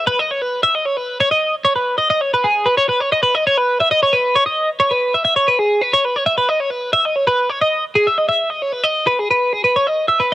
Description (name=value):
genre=rock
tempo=267 BPM (eighths)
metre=7/8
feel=straight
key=unclear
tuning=A4 = 441 Hz
part: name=twelve-string electric guitar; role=solo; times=0.0-10.3 s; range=G#4 to E5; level=-14 LUFS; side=equal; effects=wide subtle chorus, cassette tape
room=digital ambience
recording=home recording on cassette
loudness=-14 LUFS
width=side -15 dB against mid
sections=0.0-7.9 A section; 7.9-10.3 B section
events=none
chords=none